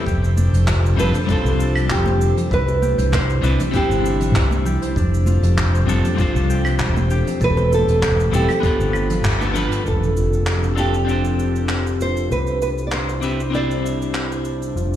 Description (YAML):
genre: sunset chillout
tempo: 98 BPM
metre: 4/4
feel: swing 53% on 16ths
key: F lydian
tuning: A4 = 440 Hz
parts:
  - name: electric guitar at the edge of break-up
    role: accompaniment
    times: 0.0-14.8 s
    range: G3 to C5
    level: -25 LUFS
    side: left 2 dB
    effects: auto-pan, digital delay
  - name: airy breathy pad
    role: sustained chords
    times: 0.0-15.0 s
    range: C3 to B4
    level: -27 LUFS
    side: left 1 dB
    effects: chorus
  - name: concert harp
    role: arpeggios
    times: 0.0-15.0 s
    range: D4 to C5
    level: -28 LUFS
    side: left 2 dB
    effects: low-pass filter, digital delay
  - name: fingered electric bass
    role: bass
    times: 0.1-15.0 s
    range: E1 to C2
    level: -20 LUFS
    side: equal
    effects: none
  - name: electronic kick drum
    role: drums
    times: 0.1-9.4 s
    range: none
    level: -22 LUFS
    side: equal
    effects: none
  - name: jazz brush drum kit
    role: drums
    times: 0.1-15.0 s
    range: cabasa, claves, handclaps, hi-hat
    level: -28 LUFS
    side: equal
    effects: none
  - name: congas and bongos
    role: percussion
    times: 0.4-9.7 s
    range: none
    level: -30 LUFS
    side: right 1 dB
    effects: none
  - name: nylon-string guitar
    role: melody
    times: 1.0-14.4 s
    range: G4 to D5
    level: -23 LUFS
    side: right 2 dB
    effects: digital delay
  - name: impact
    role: sound effects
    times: 9.9-12.3 s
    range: none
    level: -27 LUFS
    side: equal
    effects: none
room: light reverb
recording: played on a big sound system in a bare room, large studio reverb, lossy compression artefacts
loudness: -16 LUFS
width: side -11 dB against mid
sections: 0.0-9.9 A section; 9.9-15.0 B section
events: band accent 9.2-9.6; impact 9.9-12.3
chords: 0.1 F69; 2.5 Cmaj9; 5.0 F69; 7.1 Am7/E; 8.6 G9; 9.9 F69; 12.3 Cadd9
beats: | 0.06 0.68 1.29 1.90 | 2.51 3.12 3.74 4.35 | 4.96 5.57 6.18 6.80 | 7.41 8.02 8.63 9.25 | 9.86 10.47 11.08 11.70 | 12.31 12.92 13.53 14.14 | 14.76